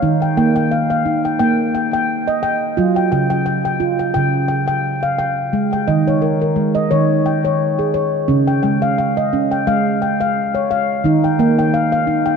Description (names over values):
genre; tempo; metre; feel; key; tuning
world meditative, meditative tuned percussion; 87 BPM; 4/4; swing 55% on 16ths; unclear; A4 = 440 Hz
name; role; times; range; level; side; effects
handpan; solo; 0.0-12.4 s; Db3 to G5; -14 LUFS; equal; ping-pong delay
room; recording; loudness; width
wet cathedral reverb, RT60 5.2 s; dark, warm production; -14 LUFS; side -6 dB against mid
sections
0.0-12.4 A section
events
none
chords
0.0 Eb5; 2.8 N.C.; 5.5 Ab5; 8.3 Db; 11.0 Eb5